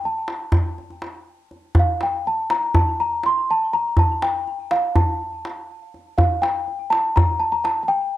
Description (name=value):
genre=Turkish makam ensemble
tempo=244 BPM (eighths)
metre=9/8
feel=straight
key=unclear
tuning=A4 = 444 Hz
part: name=small celesta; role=melody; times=0.0-8.2 s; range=F5 to C6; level=-20 LUFS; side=equal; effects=none
part: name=darbuka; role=percussion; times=0.0-7.8 s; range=none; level=-19 LUFS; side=equal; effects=none
room=light reverb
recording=cassette tape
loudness=-18 LUFS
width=side -14 dB against mid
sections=0.0-8.2 A section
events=none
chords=none